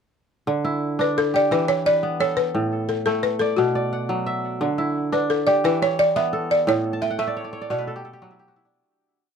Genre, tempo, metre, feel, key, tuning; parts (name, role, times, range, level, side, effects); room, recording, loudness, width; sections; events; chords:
west african traditional, West African string and xylophone music; 116 BPM (dotted quarters); 12/8; straight; D major; A4 = 440 Hz
kora; arpeggios; 0.5-9.4 s; A2 to A5; -24 LUFS; right 1 dB; tape echo
balafon; melody; 1.0-8.5 s; F#4 to E5; -20 LUFS; left 1 dB
light reverb; close, detailed microphones; -20 LUFS; side -6 dB against mid
0.5-8.7 A section
fade-out 6.7-8.7; kora fill 6.9-8.7
0.5 Dsus24; 1.5 Em; 2.5 Asus24; 3.6 Bm; 4.6 Dsus24; 5.6 Em; 6.7 N.C.; 7.7 Bm